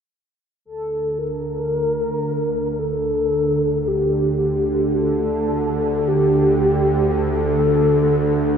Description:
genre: dark ambient drone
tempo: free time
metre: none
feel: none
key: unclear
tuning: A4 = 439 Hz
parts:
  - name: bowed-like drone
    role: drone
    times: 1.0-8.6 s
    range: D2 to D3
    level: -21 LUFS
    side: right 2 dB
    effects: built-in reverb
  - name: mellow horn-like synth lead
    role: melody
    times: 0.7-8.6 s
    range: G4 to Bb4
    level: -19 LUFS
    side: left 1 dB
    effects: chorus, diffuse ambient delay
room: wet cathedral reverb, RT60 5.0 s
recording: none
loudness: -17 LUFS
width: side -7 dB against mid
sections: 0.7-8.6 A section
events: none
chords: 0.7 D5

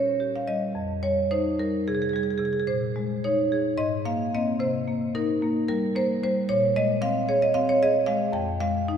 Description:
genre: classical, contemporary piece for solo marimba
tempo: 220 BPM (eighths)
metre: 7/8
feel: rubato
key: Bb dorian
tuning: A4 = 441 Hz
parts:
  - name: marimba with medium hard mallets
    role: solo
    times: 0.0-9.0 s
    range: F2 to G5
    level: -22 LUFS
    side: equal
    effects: none
room: wet church reverb, RT60 3.7 s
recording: heard from further back in the room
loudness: -22 LUFS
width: side -8 dB against mid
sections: 0.0-9.0 A section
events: none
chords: 0.0 Bbm6; 0.7 Fm9; 2.7 Bbm11; 3.8 Abadd9; 4.6 Cm7; 6.5 Bbsus2; 8.3 Fm7

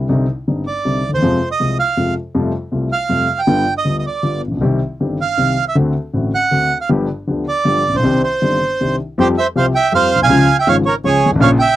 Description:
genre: tango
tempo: 159 BPM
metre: 3/4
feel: rubato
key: C harmonic minor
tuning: A4 = 438 Hz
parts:
  - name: warm grand piano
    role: accompaniment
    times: 0.0-11.6 s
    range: G1 to G4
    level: -16 LUFS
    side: left 2 dB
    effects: none
  - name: bandoneon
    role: melody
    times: 0.7-11.8 s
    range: G4 to Ab5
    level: -15 LUFS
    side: right 4 dB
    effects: none
room: light reverb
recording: dry, close 1970s-style studio recording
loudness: -14 LUFS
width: side -13 dB against mid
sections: 0.1-9.2 A section; 9.2-11.8 B section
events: none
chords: 0.1 Cmadd9; 1.2 Fm; 2.4 Fadd9; 3.5 G7; 4.6 Cm; 5.8 D7; 6.9 G7; 8.0 Cmadd9; 9.2 Fsus2; 10.3 Db

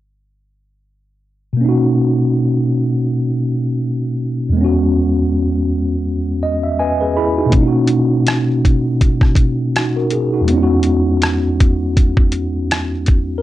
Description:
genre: lo-fi hip hop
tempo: 81 BPM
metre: 4/4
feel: swing 57% on 16ths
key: B major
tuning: A4 = 440 Hz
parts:
  - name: mellow tine electric piano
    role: accompaniment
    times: 1.5-13.4 s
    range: E2 to B5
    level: -14 LUFS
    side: equal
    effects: medium stereo tremolo, cassette tape
  - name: boom bap sampler-style drum kit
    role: drums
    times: 7.5-13.3 s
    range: hi-hat, kick drum, rim click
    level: -14 LUFS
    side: equal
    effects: none
room: moderate studio reverb, RT60 0.6 s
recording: cassette tape, faint mains hum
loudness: -13 LUFS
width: side -14 dB against mid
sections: 1.6-13.4 A section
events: tine electric piano fill 6.0-7.5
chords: 1.6 Bmaj7; 4.6 E69; 7.5 Bmaj7; 10.5 E69

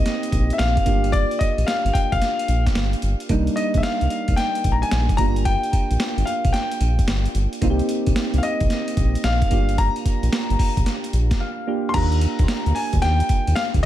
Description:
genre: R&B, new jack swing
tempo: 111 BPM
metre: 4/4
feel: swing 66% on 16ths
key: C minor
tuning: A4 = 441 Hz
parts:
  - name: clear grand piano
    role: melody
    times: 0.0-13.9 s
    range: D5 to C6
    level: -25 LUFS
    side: left 2 dB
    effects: digital delay
  - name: soft electric-piano-like synth keys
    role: accompaniment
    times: 0.0-13.9 s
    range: G3 to F5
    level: -26 LUFS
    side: right 3 dB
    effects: chorus
  - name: round analog bass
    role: bass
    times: 0.0-13.8 s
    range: G1 to Eb2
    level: -20 LUFS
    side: equal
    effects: none
  - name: boom bap sampler-style drum kit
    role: drums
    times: 0.1-13.9 s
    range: crash cymbal, hi-hat, kick drum, snare drum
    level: -23 LUFS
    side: equal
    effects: none
room: little or no reverb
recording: none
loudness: -18 LUFS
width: side -13 dB against mid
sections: 0.0-11.9 A section; 11.9-13.9 B section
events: synth keys fill 11.1-11.9; break 11.4-11.9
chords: 0.0 Cm7; 0.9 Gm7; 3.3 Cm9; 5.2 Gm7; 7.6 Cm7; 9.5 Gm7; 11.9 Ebmaj7

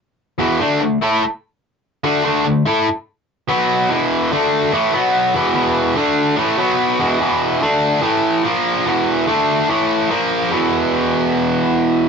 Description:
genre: rock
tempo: 145 BPM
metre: 4/4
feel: straight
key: unclear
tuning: A4 = 440 Hz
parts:
  - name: distorted electric guitar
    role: solo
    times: 0.4-12.1 s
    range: E2 to A4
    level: -14 LUFS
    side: equal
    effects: overdrive
room: wet booth ambience, RT60 0.2 s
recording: rough rehearsal-room recording, nothing above 7.6 kHz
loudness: -14 LUFS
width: side -6 dB against mid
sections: 0.0-3.9 A section; 3.9-10.5 B section; 10.5-12.1 C section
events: none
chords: 0.0 E5; 0.6 D5; 3.5 B5; 3.9 E5; 4.3 D5; 4.7 A5; 4.9 B5; 5.3 E5; 6.0 D5; 6.4 A5; 6.6 B5; 7.0 E5; 7.6 D5; 8.0 A5; 8.4 A#5; 8.9 E5; 9.3 D5; 9.7 A5; 10.1 A#5; 10.5 E5

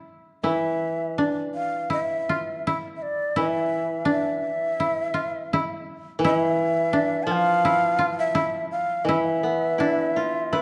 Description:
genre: japanese traditional, Japanese chamber music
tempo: 84 BPM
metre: 4/4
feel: uneven beats, rubato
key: unclear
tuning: A4 = 438 Hz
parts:
  - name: koto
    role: second line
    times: 0.0-10.6 s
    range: D4 to F4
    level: -29 LUFS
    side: equal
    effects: none
  - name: mellow shakuhachi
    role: melody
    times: 0.4-10.6 s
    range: D5 to A5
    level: -27 LUFS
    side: equal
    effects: none
  - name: koto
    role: accompaniment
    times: 0.4-10.6 s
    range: E3 to B4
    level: -29 LUFS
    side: equal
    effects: none
room: moderate scoring stage reverb, RT60 1.9 s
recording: dark, warm production, nothing above 10.8 kHz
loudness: -24 LUFS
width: mono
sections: 0.4-10.6 A section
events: none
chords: none

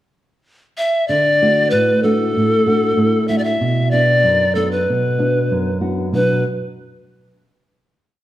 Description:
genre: andean folk, Andean ensemble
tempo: 95 BPM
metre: 2/4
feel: straight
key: B minor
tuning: A4 = 440 Hz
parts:
  - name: breathy bright pan flute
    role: melody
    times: 0.8-6.4 s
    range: A4 to E5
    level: -16 LUFS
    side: equal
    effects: none
  - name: nylon-string guitar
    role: accompaniment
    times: 1.1-6.4 s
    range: F#2 to F#4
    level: -18 LUFS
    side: equal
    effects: none
room: wet recital hall reverb, RT60 1.4 s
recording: dark, warm production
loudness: -14 LUFS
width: side -14 dB against mid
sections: 0.0-1.1 pickup bar; 1.1-6.1 A section; 6.1-7.4 final chord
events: none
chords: 0.0 N.C.; 1.1 D; 3.6 Bm

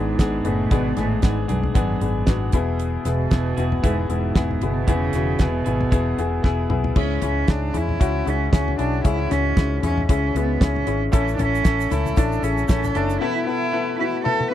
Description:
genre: piano-driven pop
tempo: 115 BPM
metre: 4/4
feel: swing 56% on 16ths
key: unclear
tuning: A4 = 445 Hz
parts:
  - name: warm cello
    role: melody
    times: 0.0-14.5 s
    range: F#2 to A4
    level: -25 LUFS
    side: right 4 dB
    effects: none
  - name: clear upright piano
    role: accompaniment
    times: 0.0-14.5 s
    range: G#2 to B4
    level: -25 LUFS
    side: left 9 dB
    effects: none
  - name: direct-recorded clean electric guitar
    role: riff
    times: 0.0-7.5, 11.1-14.5 s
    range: A2 to B4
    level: -32 LUFS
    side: right 8 dB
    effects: spring reverb
  - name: vintage muted fingered electric bass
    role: bass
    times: 0.0-13.2 s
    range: E1 to E2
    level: -24 LUFS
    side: equal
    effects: none
  - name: damped 70s drum kit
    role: drums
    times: 0.2-14.5 s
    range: crash cymbal, hi-hat, kick drum, snare drum, toms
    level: -20 LUFS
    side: equal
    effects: none
  - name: egg shaker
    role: percussion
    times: 11.1-13.2 s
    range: none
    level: -44 LUFS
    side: right 20 dB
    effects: none
room: light reverb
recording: dry, close 1970s-style studio recording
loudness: -19 LUFS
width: side -12 dB against mid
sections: 0.0-7.0 A section; 7.0-14.5 B section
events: drum fill 6.4-7.0, 14.3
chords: 0.0 G#dim; 2.5 E; 7.0 C#m; 11.1 A; 13.2 Esus4

